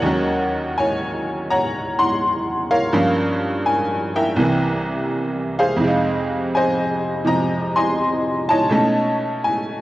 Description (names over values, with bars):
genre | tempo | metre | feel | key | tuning
solo jazz | 83 BPM | 4/4 | swing 67% on 8ths | unclear | A4 = 440 Hz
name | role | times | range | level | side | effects
tack piano | solo | 0.0-9.8 s | C2 to C6 | -17 LUFS | equal | cassette tape
room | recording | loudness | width
moderate spring reverb, RT60 1.9 s, studio reverb | home recording on cassette | -17 LUFS | side -16 dB against mid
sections
0.0-9.8 A section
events
none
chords
0.0 Ebm7; 2.9 Gm7b5; 4.4 C7; 5.8 Fm7; 8.7 Cb9